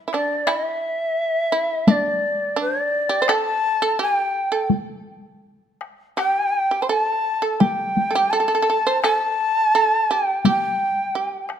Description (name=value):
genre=japanese traditional, Japanese chamber music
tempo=85 BPM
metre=4/4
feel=rubato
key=unclear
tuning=A4 = 440 Hz
part: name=shakuhachi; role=melody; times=0.1-11.5 s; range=D5 to C6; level=-20 LUFS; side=left 1 dB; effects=none
part: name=shamisen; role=second line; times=0.1-11.5 s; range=D4 to C5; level=-24 LUFS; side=right 6 dB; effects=none
part: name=taiko ensemble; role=percussion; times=0.1-11.6 s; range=none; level=-21 LUFS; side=left 2 dB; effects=none
room=light reverb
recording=close, detailed microphones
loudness=-18 LUFS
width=side -8 dB against mid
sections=0.0-11.6 A section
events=none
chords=none